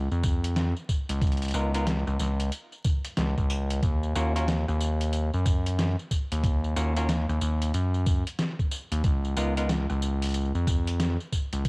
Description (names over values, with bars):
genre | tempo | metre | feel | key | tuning
glitch hop | 92 BPM | 4/4 | swing 62% on 16ths | unclear | A4 = 435 Hz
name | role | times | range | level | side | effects
gritty driven synth bass | bass | 0.0-11.6 s | Db2 to Gb2 | -26 LUFS | equal | tube saturation
boom bap sampler-style drum kit | drums | 0.1-11.7 s | hi-hat, rim click, snare drum, tambourine | -32 LUFS | equal | studio reverb, cassette tape
electronic kick drum | drums | 0.2-11.7 s | none | -25 LUFS | equal | studio reverb, cassette tape
clav | stabs | 1.5-9.7 s | Cb4 to Bb4 | -34 LUFS | equal | sidechain pumping, cassette tape, analog delay
room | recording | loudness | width
digital ambience | home recording on cassette, vinyl crackle | -24 LUFS | side -33 dB against mid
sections
0.0-11.7 A section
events
none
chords
0.0 Db; 3.8 Ebm; 9.0 Db